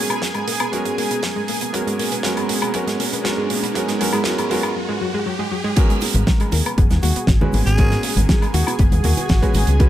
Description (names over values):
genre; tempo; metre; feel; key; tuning
nu-disco, nu disco; 119 BPM; 4/4; straight; G# minor; A4 = 440 Hz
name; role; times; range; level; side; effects
clear baby grand piano; accompaniment; 0.0-9.9 s; G#3 to B4; -24 LUFS; right 2 dB; low-pass filter, digital delay
lush unison pad; sustained chords; 0.0-9.9 s; G#4 to G#5; -29 LUFS; equal; chorus, sidechain pumping
analog pluck; arpeggios; 0.0-9.9 s; F#3 to B3; -26 LUFS; left 1 dB; chorus, sidechain pumping, digital delay
riser; sound effects; 0.1-5.8 s; none; -30 LUFS; right 1 dB; none
damped 70s drum kit; drums; 0.1-9.9 s; crash cymbal, hi-hat, snare drum, woodblock; -24 LUFS; right 2 dB; high-pass filter on hats, high-pass filter on cymbals, high-pass filter on snare, high-pass filter on perc, high-pass filter on room
electronic kick drum; drums; 0.2-9.9 s; none; -17 LUFS; equal; high-pass filter on kick, high-pass filter on room
cabasa, bongos and congas; percussion; 5.8-9.9 s; none; -27 LUFS; right 1 dB; none
fingered electric bass with an envelope filter; bass; 6.2-9.9 s; F#1 to D#2; -18 LUFS; equal; none
growling tenor saxophone; melody; 7.0-9.8 s; F#4 to G#4; -27 LUFS; equal; digital delay
room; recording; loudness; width
light reverb, small room ambience; none; -16 LUFS; side -12 dB against mid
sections
0.0-5.8 A section; 5.8-9.9 B section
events
build-up 0.0-5.8; riser 0.1-5.8; break 4.8-5.8; drop 5.8-9.9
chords
0.0 G#m11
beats
0.22 0.73 1.23 | 1.74 2.24 2.75 3.25 | 3.75 4.26 4.76 5.27 | 5.77 6.27 6.78 7.28 | 7.79 8.29 8.79 9.30 | 9.80